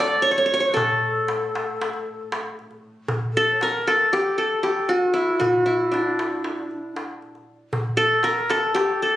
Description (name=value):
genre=Turkish makam ensemble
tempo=233 BPM (eighths)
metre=9/8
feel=straight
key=A makam hicaz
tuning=A4 = 439 Hz
part: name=qanun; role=melody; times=0.0-9.2 s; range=D4 to D5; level=-20 LUFS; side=equal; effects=none
part: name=breathy ney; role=second line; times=0.0-9.2 s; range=D4 to D5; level=-30 LUFS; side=left 2 dB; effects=none
part: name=rich double bass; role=drone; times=0.0-3.1 s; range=A2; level=-42 LUFS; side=equal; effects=none
part: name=darbuka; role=percussion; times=0.0-9.1 s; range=none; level=-29 LUFS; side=equal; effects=none
room=moderate studio ambience, RT60 0.5 s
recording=recorded on a phone in the room, studio reverb, compression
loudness=-19 LUFS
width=side -13 dB against mid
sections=0.0-3.1 A section; 3.1-9.2 B section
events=none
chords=none